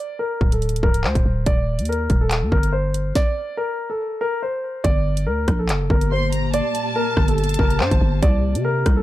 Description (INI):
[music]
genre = hip hop, drill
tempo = 142 BPM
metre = 4/4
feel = half-time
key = G minor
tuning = A4 = 440 Hz
[part]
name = dark concert grand piano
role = melody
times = 0.0-9.0 s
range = A4 to D5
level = -24 LUFS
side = left 1 dB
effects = ping-pong delay
[part]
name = growling 808-style bass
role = bass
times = 0.4-9.0 s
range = C1 to C3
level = -21 LUFS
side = equal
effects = none
[part]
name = drill drum kit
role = drums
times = 0.4-9.0 s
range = handclaps, hi-hat, kick drum, rim click, snare drum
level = -20 LUFS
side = equal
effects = none
[part]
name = granular cloud pad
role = sustained chords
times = 5.8-9.0 s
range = Bb2 to G4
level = -29 LUFS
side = left 1 dB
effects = built-in reverb
[part]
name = warm studio violin section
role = second line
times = 6.1-8.2 s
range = A5 to C6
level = -28 LUFS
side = equal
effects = ping-pong delay
[sound]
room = digital ambience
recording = dark, warm production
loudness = -18 LUFS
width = side -15 dB against mid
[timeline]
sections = 0.0-4.8 A section; 4.8-9.0 B section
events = stop 3.2-4.8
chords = 0.0 N.C.; 1.5 Ebmaj7; 4.8 Gmadd9; 8.2 Cmadd9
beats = 0.20 0.62 1.04 | 1.47 1.89 2.31 2.73 | 3.15 3.58 4.00 4.42 | 4.84 5.27 5.69 6.11 | 6.54 6.96 7.38 7.80 | 8.23 8.65